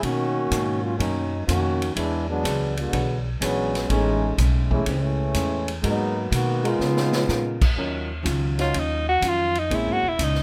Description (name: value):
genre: jazz, big band swing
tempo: 124 BPM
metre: 4/4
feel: swing 68% on 8ths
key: unclear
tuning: A4 = 439 Hz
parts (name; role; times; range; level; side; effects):
- warm trombone section; second line; 0.0-7.6 s; D3 to F#4; -27 LUFS; equal; none
- archtop guitar, miked and amplified; accompaniment; 0.0-10.4 s; A2 to C#5; -34 LUFS; equal; none
- upright bass; bass; 0.0-10.4 s; Fb1 to C#3; -28 LUFS; equal; none
- swinging big-band drum kit; drums; 0.0-10.4 s; crash cymbal, hi-hat, kick drum, ride cymbal, snare drum; -31 LUFS; equal; none
- warm grand piano; accompaniment; 3.9-10.0 s; E3 to Db5; -31 LUFS; equal; none
- edgy alto saxophone; melody; 8.6-10.4 s; Eb4 to Gb4; -25 LUFS; equal; none
room: light reverb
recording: none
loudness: -23 LUFS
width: mono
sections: 0.0-7.8 A section; 7.8-10.4 B section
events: trombone section solo 0.0-7.8; drum fill 6.8-7.3; alto saxophone solo 7.8-10.4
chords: 0.0 Bmaj9; 2.0 E13; 3.9 Amaj7; 5.8 G#m9; 6.8 C#13; 7.8 Ebm9; 9.7 Bbm7b5